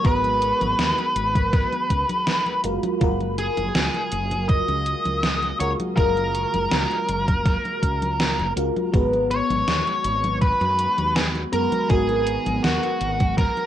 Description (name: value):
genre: vaporwave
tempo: 81 BPM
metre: 4/4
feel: straight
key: F# major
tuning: A4 = 440 Hz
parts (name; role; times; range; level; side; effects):
- octave-fuzz lead guitar; melody; 0.0-13.7 s; F#4 to D#5; -24 LUFS; equal; distortion, tape echo
- FM electric piano with soft pad layer; accompaniment; 0.0-13.7 s; G#3 to B4; -26 LUFS; equal; phaser, wide subtle chorus, tape echo
- soft string machine; sustained chords; 0.0-13.7 s; C#3 to A#5; -36 LUFS; equal; ensemble chorus
- woody fretless electric bass; bass; 0.0-13.5 s; F#1 to F#2; -27 LUFS; equal; none
- electronic kick drum; drums; 0.0-13.5 s; none; -21 LUFS; equal; overdrive
- gated 80s digital drum machine; drums; 0.0-13.7 s; congas, hi-hat, snare drum; -27 LUFS; equal; gated reverb, gated reverb snare, overdrive
room: light reverb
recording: rough home demo mix, cassette tape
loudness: -19 LUFS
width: side -11 dB against mid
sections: 0.0-13.7 A section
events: none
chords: 0.0 G#m9; 2.6 F#maj9; 8.9 G#m9